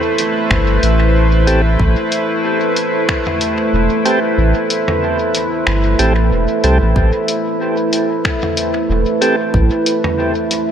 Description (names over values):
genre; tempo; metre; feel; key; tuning
ambient dub; 93 BPM; 4/4; swing 56% on 16ths; A minor; A4 = 439 Hz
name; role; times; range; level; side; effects
deep dark ambient pad; sustained chords; 0.0-10.7 s; A3 to C5; -16 LUFS; right 1 dB; chorus, built-in reverb
lo-fi sampler-style drum kit; drums; 0.2-10.7 s; finger snaps, hi-hat, toms; -22 LUFS; left 1 dB; dub echo
warm sub bass; bass; 0.5-9.7 s; E1 to C2; -14 LUFS; equal; none
electronic kick drum; drums; 0.5-9.7 s; none; -18 LUFS; equal; none
tonewheel organ; stabs; 1.5-9.4 s; C4 to A4; -21 LUFS; right 1 dB; slow rotary speaker, vintage 12-bit sampler grit, dub echo
room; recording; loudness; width
moderate lush hall reverb, RT60 2.4 s; dreamy mix soaked in reverb; -13 LUFS; side -9 dB against mid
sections
0.0-10.7 A section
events
kick drops out 4.4-7.0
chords
0.0 Am7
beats
0.51 1.15 | 1.80 2.44 3.09 3.73 | 4.38 5.02 5.67 6.31 | 6.96 7.60 8.25 8.89 | 9.54 10.18